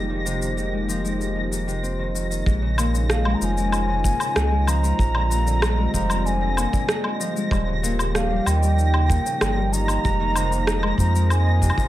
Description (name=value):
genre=folktronica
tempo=95 BPM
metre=4/4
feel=straight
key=Bb dorian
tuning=A4 = 439 Hz
part: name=warm analog pad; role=sustained chords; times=0.0-11.9 s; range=D3 to Ab4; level=-31 LUFS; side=right 1 dB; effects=chorus, vintage 12-bit sampler grit
part: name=Celtic harp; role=arpeggios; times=0.0-11.9 s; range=G2 to C4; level=-27 LUFS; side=left 3 dB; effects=tape echo
part: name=warm sub bass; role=bass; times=0.0-11.7 s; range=Eb1 to F2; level=-22 LUFS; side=equal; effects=none
part: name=flickering grainy texture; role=texture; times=0.0-11.9 s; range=Bb6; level=-33 LUFS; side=equal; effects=built-in reverb
part: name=electronic shaker, woodblock and rim click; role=drums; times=0.3-11.9 s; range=none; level=-26 LUFS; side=equal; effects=overdrive
part: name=kick drum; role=drums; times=2.5-11.9 s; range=none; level=-24 LUFS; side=equal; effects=none
part: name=mellow hollow wooden flute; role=melody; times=3.1-11.9 s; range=F5 to Bb5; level=-27 LUFS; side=right 1 dB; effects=tape echo
room=light reverb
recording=none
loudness=-19 LUFS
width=side -14 dB against mid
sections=0.0-2.5 A section; 2.5-11.9 B section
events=none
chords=0.0 Fm7; 2.5 Bbm7; 5.0 Bb7; 7.5 Eb7; 10.0 Fm7